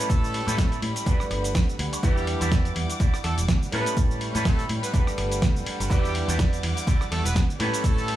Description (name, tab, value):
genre	filtered disco house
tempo	124 BPM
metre	4/4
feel	swing 56% on 16ths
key	E dorian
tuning	A4 = 440 Hz
part	dark grand piano	accompaniment	0.0-8.2 s	G3 to F#5	-33 LUFS	equal	phaser, sidechain pumping
part	rich chamber violin section	sustained chords	0.0-8.2 s	G3 to D6	-35 LUFS	left 1 dB	sidechain pumping
part	electric guitar with an envelope filter	riff	0.0-8.1 s	C#4 to D5	-32 LUFS	right 2 dB	sidechain pumping
part	dusty soul sampler-style drum kit	drums	0.0-8.2 s	hi-hat, ride cymbal, rim click, shaker, snare drum	-30 LUFS	right 1 dB	none
part	bright horn section	melody	0.1-8.2 s	G3 to B4	-34 LUFS	right 1 dB	sidechain pumping, tape echo
part	fingered electric bass	bass	0.1-8.2 s	E1 to A2	-28 LUFS	right 1 dB	tube saturation, sidechain pumping
part	electronic kick drum	drums	0.1-7.9 s	none	-22 LUFS	equal	none
room	digital ambience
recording	small room ambience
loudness	-22 LUFS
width	side -13 dB against mid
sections	0.0-8.2 A section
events	none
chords	0.0 A9; 1.1 Gmaj7; 2.0 Em9; 3.7 A9; 4.9 Gmaj7; 5.9 Em9; 7.6 A9